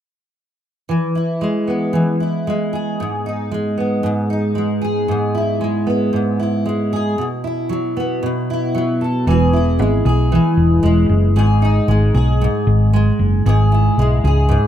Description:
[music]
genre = acoustic pop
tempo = 115 BPM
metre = 4/4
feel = straight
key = E major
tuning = A4 = 441 Hz
[part]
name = fingerpicked steel-string acoustic guitar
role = accompaniment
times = 0.9-14.7 s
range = G#2 to A4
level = -17 LUFS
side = equal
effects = double-tracked left and right
[part]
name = hollow-body short-scale fingered electric bass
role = bass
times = 9.3-14.6 s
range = E1 to C#2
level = -14 LUFS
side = equal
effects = none
[sound]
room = studio ambience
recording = rough home demo mix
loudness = -14 LUFS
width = side -10 dB against mid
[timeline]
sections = 0.9-9.3 A section; 9.3-14.7 B section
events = none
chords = 0.9 E; 3.0 G#m; 5.1 E/G#; 7.2 B7sus4; 9.3 E; 11.4 G#m; 13.5 E/G#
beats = | 0.90 1.42 1.95 2.47 | 2.99 3.52 4.04 4.56 | 5.09 5.61 6.13 6.66 | 7.18 7.70 8.23 8.75 | 9.27 9.80 10.32 10.84 | 11.36 11.89 12.41 12.93 | 13.46 13.98 14.50

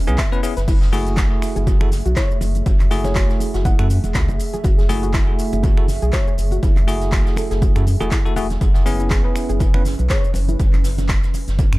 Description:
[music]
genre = deep house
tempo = 121 BPM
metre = 4/4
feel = swing 56% on 16ths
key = F# minor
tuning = A4 = 440 Hz
[part]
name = warbly tape-like pad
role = sustained chords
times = 0.0-11.8 s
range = A3 to E5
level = -31 LUFS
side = right 2 dB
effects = chorus, built-in reverb, sidechain pumping
[part]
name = round analog bass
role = bass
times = 0.0-11.8 s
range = E1 to F#2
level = -20 LUFS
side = equal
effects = sidechain pumping
[part]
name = bell-like tine electric piano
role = stabs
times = 0.1-9.8 s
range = A3 to B4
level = -26 LUFS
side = moving between left 4 dB and right 5 dB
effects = auto-pan, sidechain pumping, dub echo
[part]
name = deep house drum kit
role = drums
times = 0.1-11.8 s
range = crash cymbal, finger snaps, handclaps, hi-hat, shaker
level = -30 LUFS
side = equal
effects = small room ambience
[part]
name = soft round pluck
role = arpeggios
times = 0.2-10.6 s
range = E4 to F#5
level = -31 LUFS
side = left 3 dB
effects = chorus, sidechain pumping, dub echo
[part]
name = electronic kick drum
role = drums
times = 0.2-11.7 s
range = none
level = -18 LUFS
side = equal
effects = small room ambience
[part]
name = vintage brush drum kit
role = drums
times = 0.2-11.7 s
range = hi-hat, snare drum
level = -39 LUFS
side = right 2 dB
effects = high-pass filter on hats, small room ambience, high-pass filter on snare, high-pass filter on room, analog delay
[part]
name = congas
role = percussion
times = 0.9-11.7 s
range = none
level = -31 LUFS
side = right 2 dB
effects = none
[part]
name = soft struck synth lead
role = melody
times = 2.2-10.3 s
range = A4 to F#5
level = -30 LUFS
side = left 2 dB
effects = chorus, analog delay
[sound]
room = digital ambience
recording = echo-heavy mix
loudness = -15 LUFS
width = side -19 dB against mid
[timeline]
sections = 0.0-11.8 A section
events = none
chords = 0.0 C#m7; 0.7 F#m9; 8.6 C#m7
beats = 0.18 | 0.68 1.17 1.67 2.17 | 2.66 3.16 3.65 4.15 | 4.64 5.14 5.64 6.13 | 6.63 7.12 7.62 8.12 | 8.61 9.11 9.60 10.10 | 10.60 11.09 11.59

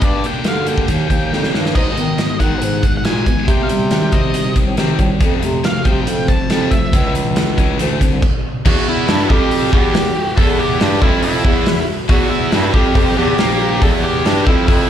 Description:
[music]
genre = quiet-loud alternative rock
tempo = 139 BPM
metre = 4/4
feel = straight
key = unclear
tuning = A4 = 440 Hz
[part]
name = octave-fuzz lead guitar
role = melody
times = 0.0-14.9 s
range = E4 to A5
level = -22 LUFS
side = left 1 dB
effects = distortion, slapback echo, digital delay
[part]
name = fingerpicked steel-string acoustic guitar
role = arpeggios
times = 0.0-8.2 s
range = F2 to G#4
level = -21 LUFS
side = right 2 dB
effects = slapback echo
[part]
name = heavy high-gain guitar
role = riff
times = 0.0-14.9 s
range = E2 to D#4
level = -23 LUFS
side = left 11 dB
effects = distortion, slapback echo
[part]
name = clear bass clarinet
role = bass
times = 0.0-14.9 s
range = A#1 to D#3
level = -20 LUFS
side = equal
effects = none
[part]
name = big rock drum kit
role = drums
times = 0.0-14.8 s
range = crash cymbal, hi-hat, kick drum, snare drum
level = -16 LUFS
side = equal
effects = none
[part]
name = distorted electric guitar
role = riff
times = 8.7-14.9 s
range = E2 to A#3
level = -20 LUFS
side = right 9 dB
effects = distortion, slapback echo
[sound]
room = light reverb, small room ambience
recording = live gig heard through the venue's PA, club reverb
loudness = -13 LUFS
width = side -10 dB against mid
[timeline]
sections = 0.0-1.8 A section; 1.8-8.7 B section; 8.7-14.9 C section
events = drum fill 1.3-1.8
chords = 0.0 Gm; 0.9 D#7; 1.8 G#m; 3.5 Cm; 5.2 F; 6.9 C#m; 7.8 D7; 8.7 Em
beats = | 0.02 0.46 0.89 1.32 | 1.75 2.19 2.62 3.05 | 3.48 3.92 4.35 4.78 | 5.21 5.64 6.07 6.50 | 6.93 7.36 7.79 8.22 | 8.65 9.08 9.51 9.94 | 10.37 10.80 11.23 11.66 | 12.09 12.53 12.96 13.39 | 13.82 14.25 14.68

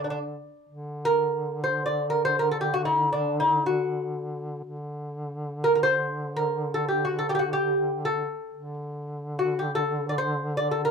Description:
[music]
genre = Persian modal ensemble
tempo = free time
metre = none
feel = none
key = D dastgah homayun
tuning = A4 = 441 Hz
[part]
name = lute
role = melody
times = 0.0-10.9 s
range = D4 to D5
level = -24 LUFS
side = equal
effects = none
[part]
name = mellow duduk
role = drone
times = 0.0-10.9 s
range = D3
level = -32 LUFS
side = equal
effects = none
[sound]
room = moderate small room reverb, RT60 0.5 s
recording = close, detailed microphones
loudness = -24 LUFS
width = side -6 dB against mid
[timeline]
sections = 0.7-10.9 A section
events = none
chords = none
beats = free time

